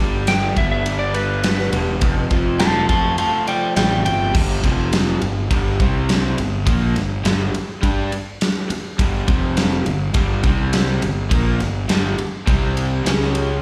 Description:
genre	classic rock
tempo	103 BPM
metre	4/4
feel	straight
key	G mixolydian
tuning	A4 = 440 Hz
part	electric slide guitar	melody	0.0-4.3 s	B4 to C6	-24 LUFS	equal	slapback echo
part	overdriven electric guitar	riff	0.0-13.6 s	F2 to G4	-28 LUFS	equal	none
part	raw garage guitar	riff	0.0-13.6 s	F2 to G4	-32 LUFS	equal	overdrive, phaser, slapback echo
part	fuzz fingered electric bass	bass	0.0-13.6 s	E1 to G2	-24 LUFS	equal	overdrive
part	huge arena drum kit	drums	0.3-13.5 s	crash cymbal, kick drum, ride cymbal, snare drum	-23 LUFS	equal	none
part	overdriven electric guitar	riff	4.3-13.6 s	F2 to G4	-30 LUFS	equal	slapback echo
room	light reverb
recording	live gig heard through the venue's PA, club reverb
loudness	-19 LUFS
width	mono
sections	0.0-4.3 A section; 4.3-13.6 B section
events	electric slide guitar solo 0.0-4.3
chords	0.0 G; 2.0 F; 4.3 G5; 4.6 F5; 5.2 G5; 5.8 C5; 6.4 G5; 9.3 F5; 9.9 G5; 10.4 C5; 11.0 G5; 12.5 C5; 13.1 C#5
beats	0.28 0.86 1.45 | 2.03 2.61 3.19 3.77 | 4.35 4.93 5.51 6.09 | 6.67 7.25 7.83 8.41 | 8.99 9.57 10.15 10.73 | 11.31 11.89 12.47 13.05

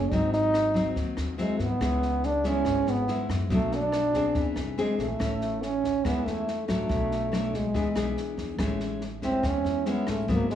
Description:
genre	bossa nova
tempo	142 BPM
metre	4/4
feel	straight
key	A major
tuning	A4 = 440 Hz
part	mellow trombone	melody	0.0-10.6 s	G#3 to D#4	-27 LUFS	right 1 dB	none
part	nylon-string guitar	accompaniment	0.0-10.6 s	G#2 to G#4	-30 LUFS	left 3 dB	none
part	upright bass	bass	0.0-10.6 s	G#1 to G#2	-32 LUFS	right 1 dB	none
part	compact cocktail drum kit	drums	0.1-10.6 s	kick drum, rim click, snare drum	-35 LUFS	equal	none
room	light reverb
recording	small room reverb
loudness	-24 LUFS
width	side -10 dB against mid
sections	0.0-8.6 A section; 8.6-10.6 B section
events	trombone solo 8.6-10.6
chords	0.1 G#7b13; 1.8 C#m7; 3.5 Bm7; 4.4 Eaug7; 5.2 Amaj7; 6.9 Bm7; 7.7 E7; 8.6 Amaj7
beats	| 0.11 0.54 0.96 1.39 | 1.81 2.23 2.66 3.08 | 3.50 3.93 4.35 4.78 | 5.20 5.62 6.05 6.47 | 6.90 7.32 7.74 8.17 | 8.59 9.02 9.44 9.86 | 10.29

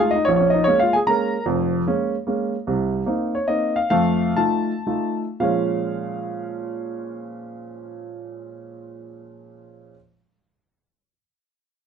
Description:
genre	jazz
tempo	105-151 BPM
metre	3/4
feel	swing 66% on 8ths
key	Bb minor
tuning	A4 = 440 Hz
part	warm baby grand piano	solo	0.0-10.0 s	F1 to Bb5	-20 LUFS	equal	none
room	moderate studio reverb, RT60 0.5 s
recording	none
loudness	-19 LUFS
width	side -7 dB against mid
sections	0.0-2.7 A section; 2.7-5.4 B section; 5.4-8.8 C section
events	slowing down 2.7-5.4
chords	0.3 Bbm7; 2.7 Cm7; 3.9 F7; 5.4 Bbm7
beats	| 0.27 0.66 1.06 | 1.46 1.86 2.26 | 2.66 3.06 3.47 | 3.90 4.36 4.86 | 5.40 5.97 6.54 | 7.12 7.69 8.26

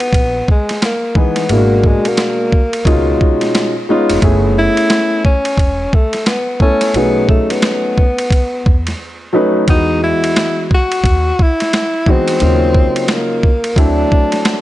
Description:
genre	hip hop, jazz-hop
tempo	88 BPM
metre	4/4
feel	swing 63% on 16ths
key	C# dorian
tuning	A4 = 440 Hz
part	mellow tenor saxophone	melody	0.0-14.6 s	G#3 to F#4	-16 LUFS	left 1 dB	none
part	boom bap sampler-style drum kit	drums	0.0-14.6 s	hi-hat, kick drum, ride cymbal, snare drum	-15 LUFS	equal	none
part	upright bass	bass	0.1-14.0 s	E1 to E2	-17 LUFS	equal	none
part	dark baby grand piano	accompaniment	1.1-14.6 s	B2 to D#5	-15 LUFS	equal	none
room	light reverb, studio reverb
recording	nothing above 10.9 kHz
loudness	-11 LUFS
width	side -15 dB against mid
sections	0.0-14.6 A section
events	silent gap 9.0-9.7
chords	0.0 C#m9 (rootless); 1.5 G#m7b5; 2.9 C#7; 4.2 F#m11; 6.9 B13; 9.7 Emaj7; 12.4 D#m9; 13.8 D9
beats	0.13 0.81 | 1.50 2.18 2.86 3.54 | 4.22 4.90 5.59 6.27 | 6.95 7.63 8.31 8.99 | 9.68 10.36 11.04 11.72 | 12.40 13.09 13.77 14.45

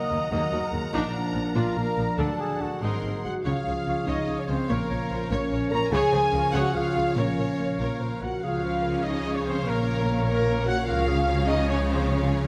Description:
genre	cinematic, heroic adventure film score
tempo	97 BPM (dotted quarters)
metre	6/8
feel	straight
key	Db major from 3.5 s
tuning	A4 = 440 Hz
part	rich studio violin section	melody	0.0-12.5 s	A#4 to B#5	-40 LUFS	equal	none
part	clear symphonic violin section	second line	0.0-12.5 s	Db5 to F#5	-42 LUFS	equal	none
part	mellow hollow concert flute	second line	0.0-12.5 s	Bb4 to D#6	-37 LUFS	equal	none
part	warm clarinet	second line	0.0-12.5 s	D4 to D#5	-36 LUFS	equal	none
part	mellow French horn section	sustained chords	0.0-12.5 s	F#3 to Bb4	-33 LUFS	equal	none
part	warm trombone section	sustained chords	0.0-12.5 s	F3 to D#4	-38 LUFS	equal	none
part	concert harp	arpeggios	0.0-12.5 s	G#2 to F#5	-37 LUFS	equal	none
part	warm trumpet section	stabs	0.0-12.5 s	A4 to Bb5	-35 LUFS	equal	none
part	rich studio viola section	accompaniment	0.1-12.5 s	D#3 to Db5	-38 LUFS	equal	none
part	dark symphonic cello section	bass	0.1-12.5 s	D#2 to D3	-34 LUFS	equal	none
part	rich symphonic double bass section	bass	0.1-12.5 s	G#1 to D#2	-33 LUFS	equal	none
room	moderate scoring stage reverb, RT60 1.6 s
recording	none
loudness	-26 LUFS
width	mono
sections	0.0-3.5 A section; 3.5-12.5 B section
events	none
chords	0.0 D#m; 0.9 A#; 2.2 D; 2.8 G#7; 3.5 Db; 4.7 Bbm; 5.9 Db; 7.2 Bbm; 8.4 Db; 9.7 Bbm; 10.9 Db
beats	0.32 | 0.93 1.55 | 2.18 2.82 | 3.46 4.09 | 4.71 5.32 | 5.93 6.54 | 7.17 7.80 | 8.43 9.05 | 9.66 10.27 | 10.88 11.50 | 12.12

